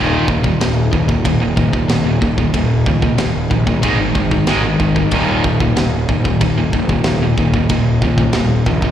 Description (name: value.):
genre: heavy metal.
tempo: 93 BPM.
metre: 4/4.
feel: straight.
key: unclear.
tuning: A4 = 438 Hz.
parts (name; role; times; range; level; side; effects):
distorted electric guitar; riff; 0.0-8.9 s; Eb2 to Ab3; -18 LUFS; left 7 dB; distortion, slapback echo.
high-gain distorted guitar; riff; 0.0-8.9 s; Eb2 to Ab3; -18 LUFS; right 7 dB; distortion.
fuzz picked electric bass; bass; 0.0-8.9 s; Eb1 to Db2; -19 LUFS; equal; overdrive.
tight metal drum kit; drums; 0.3-8.9 s; kick drum, ride cymbal, snare drum; -20 LUFS; equal; none.
room: studio reverb.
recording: live gig heard through the venue's PA, recital hall reverb.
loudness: -13 LUFS.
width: side -10 dB against mid.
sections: 0.0-8.9 A section.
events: none.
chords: 0.0 Eb5; 3.8 Ab5; 5.1 Eb5.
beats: 0.60 1.25 1.90 | 2.54 3.19 3.83 4.47 | 5.12 5.76 6.41 7.05 | 7.69 8.34.